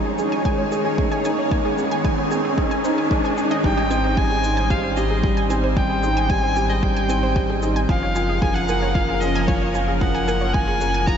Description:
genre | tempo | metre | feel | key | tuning
piano and strings electronica | 113 BPM | 4/4 | straight | Ab major | A4 = 440 Hz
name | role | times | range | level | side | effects
lush unison pad | sustained chords | 0.0-11.2 s | Eb3 to Db5 | -27 LUFS | left 1 dB | chorus, phaser, sidechain pumping
analog pluck | arpeggios | 0.0-11.1 s | Ab4 to Ab5 | -28 LUFS | right 1 dB | chorus, sidechain pumping, diffuse ambient delay
felt-muted upright piano | riff | 0.0-11.2 s | F3 to Ab4 | -24 LUFS | right 1 dB | diffuse ambient delay
riser | sound effects | 0.0-3.6 s | none | -28 LUFS | left 1 dB | none
shaker | drums | 0.2-10.9 s | none | -45 LUFS | left 2 dB | studio reverb
electronic kick drum | drums | 0.5-11.2 s | none | -23 LUFS | equal | studio reverb
warm violin | melody | 3.6-11.2 s | Db5 to Bb5 | -24 LUFS | left 1 dB | diffuse ambient delay
warm sub bass | bass | 3.6-11.2 s | Gb1 to Ab1 | -24 LUFS | equal | tube saturation, sidechain pumping
room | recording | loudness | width
wet huge ambient reverb, RT60 7.3 s | dreamy mix soaked in reverb, nothing above 7.8 kHz | -18 LUFS | side -8 dB against mid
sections
0.0-3.6 A section; 3.6-11.2 B section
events
build-up 0.0-3.6; riser 0.0-3.6; drop 3.6-11.2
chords
0.0 Eb7sus4; 3.6 Abmaj7; 7.9 Gbmaj7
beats
0.45 0.98 | 1.52 2.05 2.58 3.11 | 3.64 4.17 4.70 5.23 | 5.76 6.29 6.83 7.36 | 7.89 8.42 8.95 9.48 | 10.01 10.54 11.07

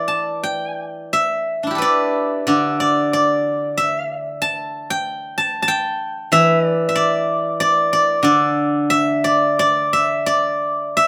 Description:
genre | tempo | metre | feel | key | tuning
chinese traditional, Chinese solo plucked strings | 93 BPM | 4/4 | uneven beats, rubato | D zhi mode | A4 = 438 Hz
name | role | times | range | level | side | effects
steel-string zither | solo | 0.0-11.1 s | D3 to A5 | -18 LUFS | equal | none
room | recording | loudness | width
light reverb | band playing live in one room | -18 LUFS | mono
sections
0.0-1.1 A section; 1.1-11.1 B section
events
none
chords
none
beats
0.44 | 1.14 1.81 2.48 3.14 | 3.79 4.43 5.07 5.70 | 6.34 6.97 7.60 8.25 | 8.92 9.59 10.26 10.96

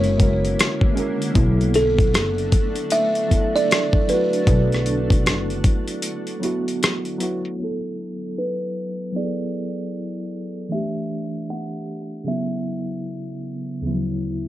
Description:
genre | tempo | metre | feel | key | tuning
lo-fi hip hop | 77 BPM | 4/4 | swing 62% on 16ths | B minor | A4 = 440 Hz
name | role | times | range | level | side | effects
buzzing kalimba | melody | 0.0-13.4 s | A4 to F#5 | -24 LUFS | right 1 dB | low-pass filter, tape echo
muted felt-like synth keys | accompaniment | 0.0-14.5 s | D2 to A#4 | -26 LUFS | equal | chorus, tremolo, low-pass filter
granular cloud pad | sustained chords | 0.0-7.5 s | D3 to E4 | -29 LUFS | left 1 dB | built-in reverb, low-pass filter
upright bass | bass | 0.0-5.6 s | F#1 to B1 | -22 LUFS | equal | none
dusty soul sampler-style drum kit | drums | 0.0-7.6 s | hi-hat, kick drum, rim click | -19 LUFS | equal | overdrive
room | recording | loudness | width
moderate small room reverb, RT60 0.5 s | low-pass filter | -19 LUFS | side -14 dB against mid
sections
0.0-7.6 A section; 7.6-14.5 B section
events
break 6.0-7.6; filter sweep 7.6-14.5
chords
0.0 F#7b13; 1.4 Bm7; 10.7 Em7; 12.3 C#madd11; 13.8 Dmaj7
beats
0.58 | 1.35 2.13 2.91 3.69 | 4.47 5.25 6.03 6.81 | 7.59 8.37 9.15 9.93 | 10.71 11.48 12.26 13.04 | 13.82

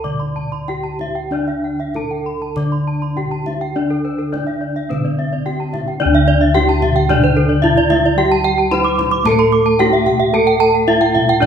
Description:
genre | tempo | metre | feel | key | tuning
Balinese gamelan | 94-111 BPM | 4/4 | straight | D slendro | A4 = 440 Hz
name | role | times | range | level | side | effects
gamelan-type bronze metallophone | melody | 0.0-11.5 s | C4-45c to D5 | -18 LUFS | right 1 dB | none
gamelan-type bronze metallophone | arpeggios | 0.0-11.5 s | C5-45c to D6 | -21 LUFS | left 4 dB | none
gamelan-type bronze metallophone | arpeggios | 0.0-11.4 s | A4+25c to D6 | -21 LUFS | right 6 dB | none
gamelan-type bossed gongs | bass | 0.0-11.5 s | D2 to D5 | -21 LUFS | left 1 dB | none
kendang | percussion | 0.0-11.5 s | none | -25 LUFS | right 1 dB | none
gamelan-type bronze metallophone | accompaniment | 1.3-11.5 s | D3 to D4 | -23 LUFS | left 1 dB | none
room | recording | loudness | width
moderate scoring stage reverb, RT60 1.6 s | minimal, uncompressed stereo recording | -14 LUFS | side -8 dB against mid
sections
0.0-6.0 A section; 6.0-11.5 B section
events
none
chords
none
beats
0.04 0.67 | 1.31 1.94 2.56 3.17 | 3.76 4.34 4.90 5.46 | 6.01 6.55 7.09 7.63 | 8.17 8.71 9.25 9.79 | 10.34 10.88 11.42

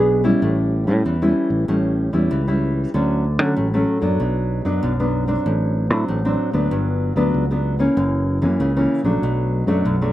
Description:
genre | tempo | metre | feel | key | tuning
samba and choro | 96 BPM | 4/4 | straight | D major | A4 = 440 Hz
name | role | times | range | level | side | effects
nylon-string guitar | accompaniment | 0.0-10.1 s | F#2 to G#4 | -19 LUFS | equal | none
fingered electric bass | bass | 0.0-10.1 s | F#1 to D3 | -21 LUFS | equal | none
room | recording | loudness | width
light reverb | recorded outdoors, with no room sound | -17 LUFS | side -14 dB against mid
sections
0.0-10.1 A section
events
none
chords
0.4 A7; 2.9 Dmaj7; 4.2 Bm; 5.5 D7/A; 6.7 Gmaj7; 8.0 F#7; 9.2 Bm7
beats
| 0.42 1.05 1.68 2.31 | 2.94 3.57 4.20 4.83 | 5.46 6.08 6.71 7.34 | 7.97 8.59 9.22 9.85

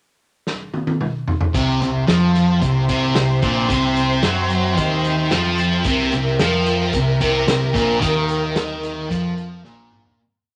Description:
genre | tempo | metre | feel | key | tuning
psychedelic rock | 111 BPM | 4/4 | straight | C mixolydian | A4 = 440 Hz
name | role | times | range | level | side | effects
vintage drum kit | drums | 0.5-10.2 s | hi-hat, kick drum, snare drum, toms | -26 LUFS | equal | none
rich studio string section | sustained chords | 1.5-10.1 s | C4 to G5 | -26 LUFS | equal | none
thick fuzz guitar | riff | 1.5-10.2 s | Bb2 to F#3 | -20 LUFS | equal | distortion, phaser
growling picked electric bass | bass | 1.5-10.2 s | Bb1 to F#2 | -28 LUFS | equal | overdrive
room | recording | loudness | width
light reverb | none | -19 LUFS | mono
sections
0.0-1.5 pickup bar; 1.5-10.2 riff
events
drum fill 0.5-1.5, 9.6-10.2; fade-out 8.0-10.2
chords
0.0 N.C.; 1.5 C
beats
0.46 1.00 | 1.55 2.09 2.62 3.16 | 3.70 4.24 4.78 5.32 | 5.86 6.40 6.94 7.48 | 8.02 8.56 9.10 9.64

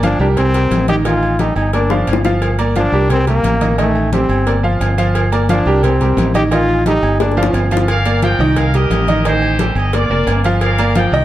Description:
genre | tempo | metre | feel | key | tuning
latin, salsa | 176 BPM | 4/4 | straight | G minor | A4 = 440 Hz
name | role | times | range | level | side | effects
bright trombone | melody | 0.0-7.7 s | A3 to G4 | -18 LUFS | left 1 dB | slapback echo
bright baby grand piano | accompaniment | 0.0-11.2 s | Eb3 to F5 | -17 LUFS | right 2 dB | none
fingered electric bass | bass | 0.0-11.2 s | F1 to C2 | -16 LUFS | equal | none
congas | percussion | 0.0-11.2 s | none | -24 LUFS | left 2 dB | none
cowbell and bongos | percussion | 0.0-11.1 s | none | -24 LUFS | left 4 dB | none
timbales and agogo bells | percussion | 0.0-11.1 s | none | -24 LUFS | right 4 dB | none
bright trumpet section | melody | 7.9-11.2 s | Eb4 to G5 | -20 LUFS | equal | none
room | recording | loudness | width
light reverb | dark, warm production | -12 LUFS | side -13 dB against mid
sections
0.0-7.9 A section; 7.9-11.2 B section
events
drum fill 1.9-2.4, 7.2-7.9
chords
0.4 Cm7; 1.1 F9; 1.7 Gm7; 3.1 Cm7; 3.8 Am7b5; 4.5 Gm7; 5.8 Cm7; 6.5 F9; 7.2 Gm7; 8.6 Cm7; 9.2 Am7b5; 9.9 Gm7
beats
0.03 0.37 0.71 | 1.05 1.39 1.73 2.08 | 2.42 2.76 3.10 3.44 | 3.78 4.12 4.47 4.81 | 5.15 5.49 5.83 6.18 | 6.52 6.86 7.20 7.54 | 7.88 8.23 8.57 8.91 | 9.25 9.59 9.93 10.27 | 10.61 10.95

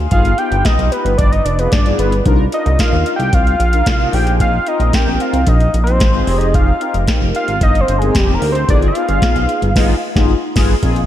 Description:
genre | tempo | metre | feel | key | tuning
early-eighties boogie funk | 112 BPM | 4/4 | straight | unclear | A4 = 440 Hz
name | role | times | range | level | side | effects
mellow synth brass | accompaniment | 0.0-11.0 s | B3 to F5 | -21 LUFS | left 3 dB | chorus, phaser
chorused synth bass | bass | 0.0-11.1 s | F1 to Eb2 | -16 LUFS | equal | none
fat analog lead | melody | 0.1-10.2 s | G4 to G5 | -18 LUFS | equal | tape echo
booming analog drum machine | drums | 0.1-11.1 s | crash cymbal, hi-hat, kick drum, snare drum | -16 LUFS | equal | none
room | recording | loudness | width
light reverb | none | -12 LUFS | side -12 dB against mid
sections
0.0-10.8 A section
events
analog synth lead solo 0.0-10.8; band accent 9.8-10.8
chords
0.1 G7b9b13; 2.3 Cm11; 4.1 Bb9sus4; 6.3 Fm9; 8.7 G7b9b13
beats
| 0.12 0.65 1.19 1.72 | 2.26 2.79 3.33 3.87 | 4.40 4.94 5.47 6.01 | 6.54 7.08 7.62 8.15 | 8.69 9.22 9.76 10.29 | 10.83

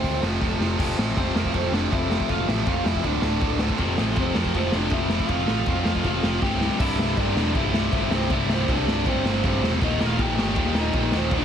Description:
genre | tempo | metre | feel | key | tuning
punk rock | 160 BPM | 4/4 | straight | unclear | A4 = 443 Hz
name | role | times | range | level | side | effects
bluesy overdriven lead guitar | melody | 0.0-11.4 s | Bb3 to G5 | -28 LUFS | equal | distortion
crunchy overdriven guitar | riff | 0.0-11.4 s | C2 to F3 | -29 LUFS | left 11 dB | none
tight distorted guitar | riff | 0.0-11.4 s | C2 to F3 | -29 LUFS | right 15 dB | distortion
overdriven picked electric bass | bass | 0.0-11.4 s | C1 to F2 | -28 LUFS | equal | none
raw garage drum kit | drums | 0.0-11.4 s | crash cymbal, hi-hat, kick drum, ride cymbal, snare drum | -25 LUFS | equal | none
scooped high-gain guitar | riff | 3.8-11.4 s | C2 to F3 | -31 LUFS | left 3 dB | distortion
room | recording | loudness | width
light reverb | heavily compressed radio sound | -20 LUFS | side -8 dB against mid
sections
0.8-6.8 A section; 6.8-11.4 B section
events
drum fill 0.4-0.8, 6.4-6.8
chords
0.0 F5; 3.0 D5; 3.8 F5; 6.4 C5; 6.8 C; 9.8 Eb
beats
0.04 0.41 | 0.79 1.17 1.54 1.92 | 2.30 2.67 3.05 3.42 | 3.80 4.18 4.55 4.93 | 5.30 5.68 6.05 6.43 | 6.80 7.18 7.55 7.93 | 8.30 8.68 9.05 9.43 | 9.80 10.18 10.55 10.93 | 11.31

